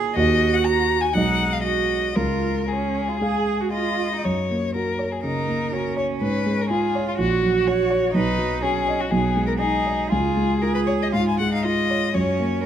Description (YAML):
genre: quick classical-period movement for piano trio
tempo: 114-125 BPM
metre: 4/4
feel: rubato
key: F# major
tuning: A4 = 440 Hz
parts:
  - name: rich cello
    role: second line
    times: 0.0-12.7 s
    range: B3 to G#4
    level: -25 LUFS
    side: right 8 dB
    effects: none
  - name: dark concert grand piano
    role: accompaniment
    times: 0.0-12.7 s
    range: A#1 to E#5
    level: -23 LUFS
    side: equal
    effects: none
  - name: rich violin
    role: melody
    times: 0.2-12.7 s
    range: E#4 to A#5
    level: -24 LUFS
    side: left 6 dB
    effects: none
room: moderate scoring stage reverb, RT60 2.0 s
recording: close, detailed microphones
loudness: -19 LUFS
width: side -9 dB against mid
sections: 0.0-4.2 A section; 4.2-12.7 B section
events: none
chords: 0.2 D#m; 1.1 G#m7/B; 2.2 C#; 4.2 F#; 6.2 C#/G#; 7.2 F#/A#; 8.2 B; 9.1 G#m/B; 10.1 C#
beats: | 0.16 0.65 1.15 1.65 | 2.16 2.69 3.21 3.73 | 4.24 4.74 5.24 5.72 | 6.21 6.70 7.18 7.67 | 8.15 8.64 9.12 9.62 | 10.12 10.63 11.14 11.65 | 12.16 12.65